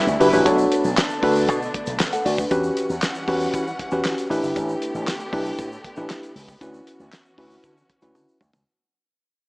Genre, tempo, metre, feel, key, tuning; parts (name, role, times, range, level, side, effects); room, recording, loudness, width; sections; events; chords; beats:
early-eighties boogie funk; 117 BPM; 4/4; straight; A4 = 440 Hz
warm symphonic string section; sustained chords; 0.0-8.6 s; D3 to F#5; -30 LUFS; equal
slap bass with an envelope filter; bass; 0.1-8.6 s; G1 to E3; -27 LUFS; equal
tube shaker; percussion; 0.1-8.7 s; -42 LUFS; right 1 dB
bright tine electric piano; accompaniment; 0.2-8.4 s; C#4 to F#5; -21 LUFS; equal
damped 70s drum kit; drums; 0.2-8.7 s; handclaps, hi-hat, kick drum, snare drum, toms; -25 LUFS; equal
light reverb, studio ambience; small speaker sound; -19 LUFS; side -29 dB against mid
0.5-8.7 A section
fade-out 0.5-8.7; drum fill 8.2-8.7
0.5 Bm9; 2.5 Em69; 4.3 A9sus4; 6.6 Dmaj13
| 0.46 0.97 1.48 2.00 | 2.51 3.02 3.54 4.05 | 4.56 5.07 5.59 6.10 | 6.61 7.12 7.64 8.15